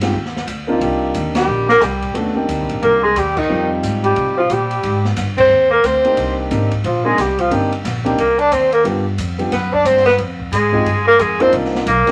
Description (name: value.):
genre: jazz, small-group swing and bop.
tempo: 179 BPM.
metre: 4/4.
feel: swing 62% on 8ths.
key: C minor.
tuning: A4 = 440 Hz.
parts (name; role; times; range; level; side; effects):
dark grand piano; accompaniment; 0.0-12.1 s; G3 to Bb4; -23 LUFS; equal; none.
upright bass; bass; 0.0-12.1 s; G1 to C3; -25 LUFS; equal; none.
open jazz drum kit; drums; 0.0-12.1 s; crash cymbal, hi-hat, kick drum, ride cymbal, snare drum; -29 LUFS; equal; none.
breathy alto saxophone; melody; 1.4-12.1 s; Eb4 to D5; -18 LUFS; equal; none.
warm tenor saxophone; second line; 1.4-12.1 s; Eb3 to D4; -20 LUFS; equal; none.
room: moderate club reverb, RT60 0.9 s.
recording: vinyl crackle.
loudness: -16 LUFS.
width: mono.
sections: 0.0-12.1 A section.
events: band accent 1.3, 3.3, 5.3.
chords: 0.0 Fm9; 0.8 Cm9; 3.5 Fm9; 6.2 Cm9; 8.8 G7; 10.2 Fm9; 11.5 Cm9.